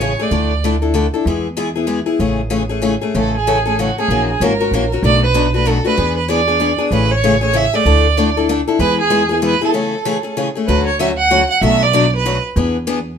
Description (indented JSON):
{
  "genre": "acoustic string swing (jazz manouche)",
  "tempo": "191 BPM",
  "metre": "3/4",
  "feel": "swing 60% on 8ths",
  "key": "A major",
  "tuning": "A4 = 440 Hz",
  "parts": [
    { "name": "warm violin", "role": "melody", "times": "0.0-0.6, 3.2-12.4 s", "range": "F#4 to F#5", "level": "-16 LUFS", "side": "right 4 dB", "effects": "none" },
    { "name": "picked steel-string acoustic guitar", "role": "accompaniment", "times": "0.0-13.0 s", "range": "B2 to A#4", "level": "-17 LUFS", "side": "left 4 dB", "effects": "none" },
    { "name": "upright bass", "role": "bass", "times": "0.0-13.2 s", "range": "G#1 to E2", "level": "-19 LUFS", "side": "right 1 dB", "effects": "none" }
  ],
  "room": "moderate studio reverb, RT60 0.8 s",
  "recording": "minimal, uncompressed stereo recording",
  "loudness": "-13 LUFS",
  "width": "side -7 dB against mid",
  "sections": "0.0-3.1 A section; 3.1-10.7 A section; 10.7-13.2 B section",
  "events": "break 9.7-10.7",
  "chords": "0.3 Dsus2; 1.3 E; 2.2 Amaj7; 3.1 A; 4.1 F#7; 5.0 Bm7; 6.0 E7; 6.9 Amaj7; 7.9 Dsus2; 8.8 E; 9.7 Amaj7; 10.7 Dmaj7; 11.6 Bm7; 12.6 E7"
}